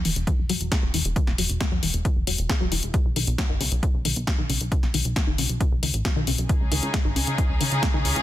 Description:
uplifting trance; 135 BPM; 4/4; straight; E major; A4 = 440 Hz
plucky analog bass; bass; 0.0-8.2 s; E1 to E2; -26 LUFS; equal; sidechain pumping
tight sequenced synth; arpeggios; 0.1-8.1 s; C#3 to G#3; -31 LUFS; left 2 dB; chorus, phaser, sidechain pumping, ping-pong delay
punchy analog drum machine; drums; 0.1-8.2 s; hi-hat, snare drum; -27 LUFS; left 3 dB; overdrive, sidechain pumping on hats, sidechain pumping on cymbals
electronic kick drum; drums; 0.3-7.9 s; -24 LUFS; equal; overdrive
rich studio string section; sustained chords; 6.5-8.2 s; C#3 to G#4; -28 LUFS; equal; sidechain pumping
little or no reverb; dense, heavily limited modern master; -21 LUFS; side -14 dB against mid
0.0-8.2 A section
filter sweep on synth arpeggio sound 0.0-8.2
0.0 Esus2; 2.9 Badd9; 6.5 C#sus2

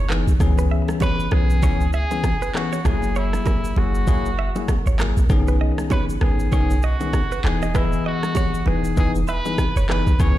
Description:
afrobeats; 98 BPM; 4/4; swing 58% on 16ths; A4 = 440 Hz
clear trumpet; melody; 0.0-10.4 s; E4 to C#5; -28 LUFS; right 2 dB; ping-pong delay
direct-recorded clean electric guitar; riff; 0.0-10.0 s; G#4 to E5; -32 LUFS; right 9 dB; ping-pong delay
clean 808-style bass; bass; 0.0-10.4 s; E1 to C#2; -20 LUFS; equal
bell-like tine electric piano; accompaniment; 0.1-10.4 s; D#3 to D#5; -25 LUFS; left 5 dB
afro-pop drum kit; drums; 0.1-10.4 s; handclaps, kick drum, rim click, shaker; -23 LUFS; equal
bongos and congas; percussion; 0.3-10.4 s; -32 LUFS; right 6 dB
little or no reverb; played on a big sound system in a bare room, stone room reverb; -18 LUFS; side -14 dB against mid
0.0-10.4 A section
0.4 C#m7; 2.9 F#9; 5.3 B69; 7.4 Emaj7

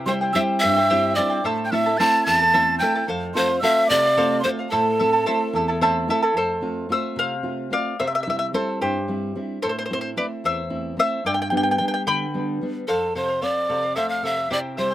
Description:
andean folk; 73 BPM (dotted quarters); 6/8; straight; A4 = 445 Hz
charango; accompaniment; 0.0-14.9 s; E4 to B5; -24 LUFS; equal
nylon-string guitar; accompaniment; 0.0-14.9 s; E2 to F4; -27 LUFS; right 1 dB; slapback echo
breathy mellow pan flute; melody; 0.1-5.8, 12.9-14.9 s; A4 to A5; -21 LUFS; left 1 dB
breathy quena; second line; 0.1-5.8, 12.9-14.9 s; A5 to A6; -24 LUFS; right 3 dB
little or no reverb; recorded outdoors, with no room sound; -19 LUFS; side -13 dB against mid
0.0-6.4 A section; 6.4-12.9 B section; 12.9-14.9 C section
charango solo 6.4-12.9
0.0 C; 1.4 Am; 3.1 F; 4.7 Am; 6.4 F; 8.0 C; 9.6 Am; 11.3 G; 12.9 F

